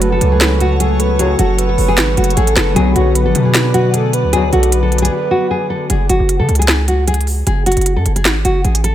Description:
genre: hip hop, trap.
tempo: 153 BPM.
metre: 4/4.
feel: half-time.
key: F# minor.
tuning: A4 = 440 Hz.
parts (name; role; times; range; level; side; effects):
nylon-string guitar; melody; 0.0-8.9 s; F#4 to A4; -18 LUFS; equal; low-pass filter, ping-pong delay.
breathy flute-like synth lead; second line; 0.0-5.9 s; A4 to C#5; -22 LUFS; right 4 dB; chorus, ping-pong delay.
warbly lo-fi synth keys; accompaniment; 0.0-5.9 s; C#3 to B4; -20 LUFS; left 2 dB; chorus, low-pass filter.
glassy FM pad; sustained chords; 0.0-5.9 s; A4 to D6; -25 LUFS; left 4 dB; ensemble chorus, built-in reverb.
hard-hitting 808-style bass; bass; 0.0-8.9 s; F#1 to C#3; -15 LUFS; equal; none.
trap drum kit; drums; 0.0-8.9 s; finger snaps, hi-hat, snare drum; -17 LUFS; right 1 dB; none.
warm brass ensemble; stabs; 1.2-4.6 s; C#2 to F#3; -25 LUFS; left 5 dB; none.
room: light reverb, digital ambience.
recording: none.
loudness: -11 LUFS.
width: side -12 dB against mid.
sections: 0.0-5.9 A section; 5.9-8.9 B section.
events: break 5.1-5.9.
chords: 0.0 F#m; 2.8 Bm; 5.9 F#5.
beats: 0.02 0.41 0.80 | 1.19 1.59 1.98 2.37 | 2.76 3.15 3.55 3.94 | 4.33 4.72 5.12 5.51 | 5.90 6.29 6.68 7.08 | 7.47 7.86 8.25 8.64.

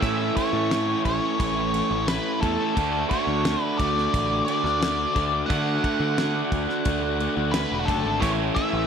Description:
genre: classic rock.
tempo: 88 BPM.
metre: 4/4.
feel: straight.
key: unclear.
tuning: A4 = 440 Hz.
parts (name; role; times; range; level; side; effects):
octave-fuzz lead guitar; melody; 0.0-8.9 s; F#4 to F#5; -27 LUFS; left 1 dB; distortion, analog delay.
crunchy overdriven guitar; riff; 0.0-8.9 s; A2 to F#4; -29 LUFS; right 12 dB; none.
overdriven electric guitar; riff; 0.0-8.9 s; A2 to F#4; -30 LUFS; left 12 dB; none.
raw garage guitar; riff; 0.0-8.9 s; A2 to D4; -30 LUFS; right 1 dB; overdrive.
growling picked electric bass; bass; 0.0-8.9 s; E1 to D3; -29 LUFS; equal; overdrive.
damped 70s drum kit; drums; 0.0-8.7 s; crash cymbal, kick drum, snare drum; -30 LUFS; equal; none.
room: light reverb, small room ambience.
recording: none.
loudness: -21 LUFS.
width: side -7 dB against mid.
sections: 0.0-8.9 A section.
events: none.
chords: 0.0 A; 2.8 D; 8.2 A.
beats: | 0.02 0.71 1.39 2.08 | 2.76 3.45 4.13 4.81 | 5.50 6.18 6.86 7.54 | 8.23.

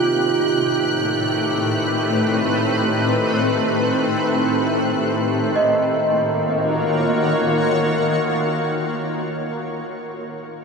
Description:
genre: ambient.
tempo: free time.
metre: none.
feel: none.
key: unclear.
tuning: A4 = 440 Hz.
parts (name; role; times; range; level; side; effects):
shimmering ambient pad; sustained chords; 0.0-9.1 s; A2 to Db5; -19 LUFS; equal; chorus, built-in reverb.
celesta; arpeggios; 0.0-0.1, 5.6-10.6 s; F4 to Eb5; -24 LUFS; right 3 dB; ping-pong delay.
pedal harmonium; drone; 0.0-9.2 s; Eb3; -27 LUFS; equal; stereo widening.
dark studio violin section; texture; 0.0-5.6 s; Gb6; -29 LUFS; equal; none.
room: wet huge ambient reverb, RT60 7.5 s.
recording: none.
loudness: -17 LUFS.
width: side -4 dB against mid.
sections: 0.0-5.6 A section; 5.6-8.4 B section.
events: none.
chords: 0.0 Am7; 5.6 Ebm7.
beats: free time.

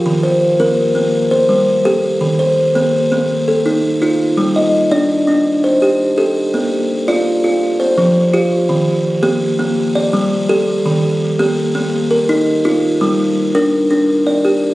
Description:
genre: southern african traditional.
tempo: 111 BPM (dotted quarters).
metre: 12/8.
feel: straight.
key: unclear.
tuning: A4 = 440 Hz.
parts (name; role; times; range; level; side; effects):
buzzing kalimba; solo; 0.0-14.7 s; Eb3 to Eb5; -12 LUFS; equal; tape echo.
room: wet recital hall reverb, RT60 1.7 s.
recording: recorded on a phone in the room, studio reverb.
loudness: -12 LUFS.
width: side -18 dB against mid.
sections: 0.0-6.5 A section; 6.5-14.7 B section.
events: none.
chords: 0.1 Eb; 1.1 Gsus24; 2.2 Eb5; 4.4 G5; 6.5 Bb; 7.6 F5; 8.7 Eb; 9.8 G5; 10.8 Eb; 13.0 Gm.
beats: | 0.05 0.59 1.13 1.67 | 2.21 2.75 3.29 3.84 | 4.38 4.92 5.46 6.00 | 6.54 7.08 7.62 8.15 | 8.69 9.23 9.77 10.31 | 10.85 11.39 11.93 12.47 | 13.01 13.54 14.08 14.62.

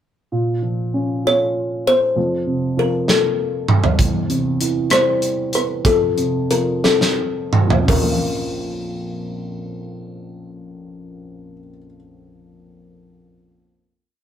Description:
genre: six-eight pop ballad.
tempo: 56-66 BPM (dotted quarters).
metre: 6/8.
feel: straight.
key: Bb harmonic minor.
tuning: A4 = 440 Hz.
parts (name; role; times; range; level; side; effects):
dark upright piano; accompaniment; 0.3-14.2 s; Bb1 to F4; -22 LUFS; right 1 dB; none.
kalimba; melody; 1.3-11.7 s; A4 to Db5; -19 LUFS; left 3 dB; none.
modern studio drum kit; drums; 3.1-8.0 s; hi-hat, kick drum, rim click, snare drum, toms; -18 LUFS; right 2 dB; none.
room: moderate small room reverb, RT60 0.5 s.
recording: rough rehearsal-room recording.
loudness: -16 LUFS.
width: side -10 dB against mid.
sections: 0.3-7.9 verse; 7.9-12.2 final chord.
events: drum fill 3.1-4.0, 6.8-7.9; slowing down 4.0-7.9.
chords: 0.3 Bbm; 2.2 Fsus4; 4.0 C/E; 5.8 F; 7.9 Bbm.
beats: | 0.32 1.25 | 2.16 3.08 | 3.99 4.91 | 5.85 6.83 | 7.88 8.95 | 10.02 11.09.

